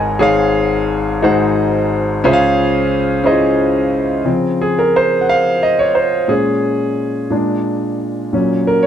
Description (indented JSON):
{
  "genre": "gospel",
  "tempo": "59 BPM (dotted quarters)",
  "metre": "6/8",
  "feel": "straight",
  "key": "Db major",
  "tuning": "A4 = 441 Hz",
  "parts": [
    { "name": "warm concert grand piano", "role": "solo", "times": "0.0-8.9 s", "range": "Ab1 to Ab5", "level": "-13 LUFS", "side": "equal", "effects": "none" }
  ],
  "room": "light reverb",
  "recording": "dark, warm production",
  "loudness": "-13 LUFS",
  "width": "side -9 dB against mid",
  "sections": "0.0-4.3 A section; 4.3-8.9 B section",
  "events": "grand piano fill 0.0; grand piano solo 4.3-8.9",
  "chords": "0.2 Db/Ab; 1.2 Ab7; 2.2 Dbmaj7; 6.3 Bbm7; 7.3 Bb7; 8.3 Gb/Bb",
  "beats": "| 0.20 1.22 | 2.23 3.25 | 4.27 5.28 | 6.30 7.31 | 8.33"
}